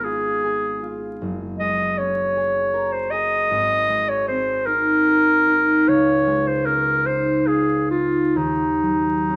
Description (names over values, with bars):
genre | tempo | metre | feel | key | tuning
classical, impressionist duo for clarinet and harp | 42-54 BPM (dotted quarters) | 6/8 | rubato | unclear | A4 = 440 Hz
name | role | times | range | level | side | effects
warm clarinet | melody | 0.0-9.4 s | Eb4 to Eb5 | -22 LUFS | equal | none
concert harp | accompaniment | 0.0-9.4 s | Gb1 to Bb4 | -25 LUFS | equal | none
room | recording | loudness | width
light reverb | close, detailed microphones, vinyl crackle | -20 LUFS | mono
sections
0.0-9.4 A section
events
none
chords
0.0 Abm6; 1.2 Gbadd9; 3.5 Abadd9; 5.9 Dbadd9; 8.4 Ebm9